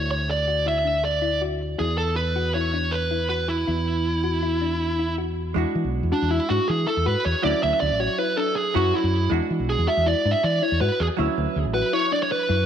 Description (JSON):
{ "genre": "progressive instrumental, progressive", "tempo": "160 BPM", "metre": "5/4", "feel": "straight", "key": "E mixolydian", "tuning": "A4 = 440 Hz", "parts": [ { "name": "fuzz lead guitar", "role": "melody", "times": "0.0-12.7 s", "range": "D4 to E5", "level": "-23 LUFS", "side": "right 2 dB", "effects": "distortion, tape echo" }, { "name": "thumb-piano-like synth pluck", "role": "arpeggios", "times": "0.0-12.7 s", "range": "D4 to F#4", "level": "-30 LUFS", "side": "left 10 dB", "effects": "chorus, tape echo" }, { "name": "fingered electric bass", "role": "bass", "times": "0.0-12.7 s", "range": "A1 to E3", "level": "-25 LUFS", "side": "equal", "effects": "none" }, { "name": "vintage hollow-body jazz guitar", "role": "accompaniment", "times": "5.5-12.7 s", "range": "F#3 to F#4", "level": "-30 LUFS", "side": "right 10 dB", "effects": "none" } ], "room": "moderate echo chamber reverb, RT60 1.5 s", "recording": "1960s-style stereo with parts hard left and right", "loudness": "-20 LUFS", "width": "side -8 dB against mid", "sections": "0.0-5.6 A section; 5.6-12.7 B section", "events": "lead electric guitar solo 5.6-12.7", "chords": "0.0 Dadd9; 1.8 Esus2; 5.6 E7; 7.4 Dmaj9; 9.3 E7; 11.2 Dmaj9" }